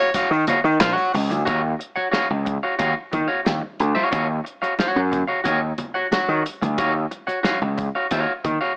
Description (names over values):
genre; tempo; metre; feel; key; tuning
funk; 90 BPM; 4/4; straight; Eb minor; A4 = 440 Hz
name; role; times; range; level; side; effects
electric guitar at the edge of break-up; accompaniment; 0.0-8.7 s; Gb4 to Gb5; -25 LUFS; equal; none
warm soul drum kit; drums; 0.1-8.6 s; handclaps, hi-hat, kick drum, snare drum; -28 LUFS; equal; none
congas; percussion; 0.1-8.6 s; none; -36 LUFS; equal; none
egg shaker; percussion; 0.2-1.5 s; none; -51 LUFS; equal; none
gritty slap bass; bass; 0.3-8.6 s; Bb1 to Eb3; -24 LUFS; equal; overdrive
room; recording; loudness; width
light reverb; AM radio sound; -22 LUFS; mono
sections
0.0-1.5 A section; 1.5-8.8 B section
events
none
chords
0.0 Ebm9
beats
0.15 0.81 | 1.48 2.14 2.80 3.47 | 4.13 4.79 5.46 6.12 | 6.79 7.45 8.12